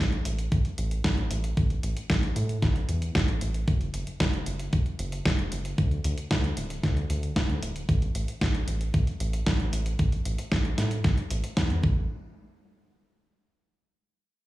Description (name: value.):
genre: italo disco.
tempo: 114 BPM.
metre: 4/4.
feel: straight.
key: unclear.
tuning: A4 = 439 Hz.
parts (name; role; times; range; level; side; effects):
round analog bass; bass; 0.0-12.1 s; D1 to A2; -28 LUFS; equal; none.
clean 12-bit digital drum machine; drums; 0.1-11.8 s; hi-hat, snare drum; -32 LUFS; equal; overdrive.
electronic kick drum; drums; 0.5-11.9 s; none; -26 LUFS; equal; overdrive.
room: light reverb.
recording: dry, gritty hardware recording, studio reverb.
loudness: -25 LUFS.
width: side -17 dB against mid.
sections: 0.0-12.1 A section; 12.1-14.2 B section.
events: none.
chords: none.